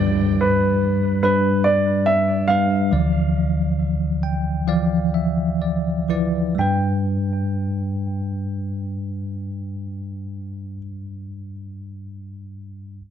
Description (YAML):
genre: pop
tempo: 61-74 BPM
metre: 4/4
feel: straight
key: G mixolydian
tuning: A4 = 441 Hz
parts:
  - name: warm grand piano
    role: melody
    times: 0.0-10.8 s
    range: B4 to G5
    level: -21 LUFS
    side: right 1 dB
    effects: digital delay
  - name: bell-like tine electric piano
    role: accompaniment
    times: 0.0-13.0 s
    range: D2 to G5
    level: -21 LUFS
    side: equal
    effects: medium stereo tremolo
room: light reverb, small room ambience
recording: dense, heavily limited modern master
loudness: -18 LUFS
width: side -9 dB against mid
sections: 0.0-6.6 A section; 6.6-10.5 B section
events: slowing down 0.0-6.6; tine electric piano fill 3.8-6.6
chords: 0.0 G; 2.9 Dmadd9; 6.6 G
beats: 0.41 1.23 2.06 | 2.91 3.78 4.68 5.60 | 6.57 7.54 8.52 9.50